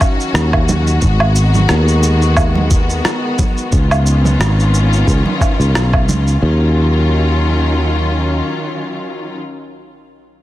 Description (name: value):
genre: sunset chillout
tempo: 89 BPM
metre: 4/4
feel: swing 56% on 16ths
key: Eb minor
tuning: A4 = 440 Hz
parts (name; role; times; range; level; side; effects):
- rich symphonic string section; sustained chords; 0.0-9.4 s; Eb3 to Gb4; -19 LUFS; left 2 dB; none
- electronic kick drum; drums; 0.0-6.0 s; none; -15 LUFS; equal; none
- electronic woodblock, shaker and rim click; drums; 0.0-6.4 s; none; -20 LUFS; right 1 dB; soft clipping on snare
- sustaining fretless electric bass; bass; 0.3-8.4 s; Ab1 to Eb2; -13 LUFS; equal; none
- congas; percussion; 0.7-6.2 s; none; -21 LUFS; right 3 dB; none
room: little or no reverb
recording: dense, heavily limited modern master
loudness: -11 LUFS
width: side -15 dB against mid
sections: 0.0-6.4 A section; 6.4-9.1 B section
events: none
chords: 0.0 Ebm7; 1.0 Abm7; 3.7 Db9; 6.4 Ebm9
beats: 0.35 | 1.02 1.70 2.37 3.04 | 3.72 4.39 5.07 5.74 | 6.42 7.09 7.76 8.44